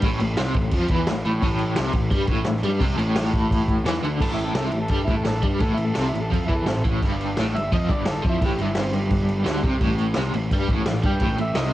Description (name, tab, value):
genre	garage rock duo or trio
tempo	172 BPM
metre	4/4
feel	straight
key	A minor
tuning	A4 = 440 Hz
part	overdriven electric guitar	riff	0.0-11.7 s	G2 to G3	-24 LUFS	equal	tremolo
part	fuzz picked electric bass	bass	0.0-11.7 s	G1 to G2	-26 LUFS	equal	overdrive
part	vintage drum kit	drums	0.0-11.6 s	crash cymbal, kick drum, snare drum	-24 LUFS	equal	vintage 12-bit sampler grit, cassette tape
part	combo organ	melody	4.2-11.7 s	G3 to G5	-29 LUFS	equal	cassette tape
room	light reverb, small room ambience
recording	home recording on cassette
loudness	-20 LUFS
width	side -15 dB against mid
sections	0.0-4.2 A section; 4.2-11.7 B section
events	transistor combo organ solo 4.2-11.7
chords	0.0 Am; 7.0 G5; 9.8 Am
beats	| 0.02 0.37 0.72 1.07 | 1.42 1.77 2.12 2.47 | 2.81 3.16 3.51 3.86 | 4.21 4.56 4.91 5.26 | 5.61 5.96 6.31 6.67 | 7.02 7.37 7.72 8.07 | 8.42 8.77 9.12 9.47 | 9.82 10.17 10.52 10.87 | 11.22 11.57